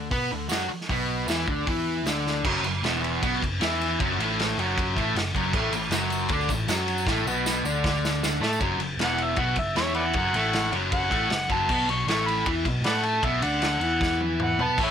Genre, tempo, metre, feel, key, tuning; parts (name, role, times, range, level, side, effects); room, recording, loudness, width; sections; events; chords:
garage rock duo or trio; 155 BPM; 4/4; straight; F# minor; A4 = 440 Hz
fuzz guitar; riff; 0.0-14.9 s; E2 to B4; -26 LUFS; equal; distortion
picked electric bass; bass; 0.0-14.9 s; E1 to B2; -31 LUFS; equal; tube saturation
raw garage drum kit; drums; 0.1-14.9 s; crash cymbal, hi-hat, kick drum, ride cymbal, snare drum, toms; -28 LUFS; equal
tambourine; percussion; 0.5-2.2, 5.5-8.6 s; -38 LUFS; right 3 dB
overdriven harmonica; melody; 9.0-14.9 s; B4 to C#6; -27 LUFS; equal
light reverb; -22 LUFS; side -8 dB against mid
0.0-2.4 A section; 2.4-8.6 B section; 8.6-14.9 C section
drum fill 2.3, 7.1-8.6, 14.0-14.8; harmonica solo 8.6-14.9
0.0 Bmadd11; 2.4 F#m; 5.5 Bm7/F#; 8.6 F#m; 11.7 B5